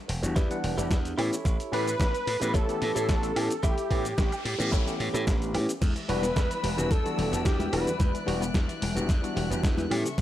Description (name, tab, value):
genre	nu-disco, nu disco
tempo	110 BPM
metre	4/4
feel	straight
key	E dorian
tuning	A4 = 440 Hz
part	direct-recorded clean electric guitar	riff	0.1-5.6 s	E4 to E5	-36 LUFS	right 2 dB	wide subtle chorus
part	glassy slap bass	bass	0.1-10.2 s	E1 to A2	-32 LUFS	equal	none
part	dusty soul sampler-style drum kit	drums	0.1-10.2 s	crash cymbal, hi-hat, shaker, snare drum, woodblock	-35 LUFS	equal	none
part	overdriven tine electric piano	accompaniment	0.2-10.1 s	E3 to F#5	-32 LUFS	equal	phaser
part	electronic kick drum	drums	0.4-10.2 s	none	-26 LUFS	equal	overdrive
part	wide unison lead	melody	1.7-8.2 s	G4 to B4	-32 LUFS	equal	tape echo
part	noise sweep	sound effects	4.1-5.8 s	none	-39 LUFS	left 1 dB	none
part	rich chamber string section	sustained chords	5.8-10.2 s	A4 to F#6	-39 LUFS	left 2 dB	sidechain pumping
part	analog pluck	arpeggios	5.8-10.2 s	C#3 to B3	-37 LUFS	left 3 dB	chorus, sidechain pumping, tape echo
part	congas	percussion	5.8-10.2 s	none	-36 LUFS	left 4 dB	none
room	little or no reverb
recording	dry, gritty hardware recording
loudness	-25 LUFS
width	side -12 dB against mid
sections	0.0-10.2 A section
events	noise sweep 4.1-5.8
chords	0.0 Em7; 1.2 A7; 5.8 Em7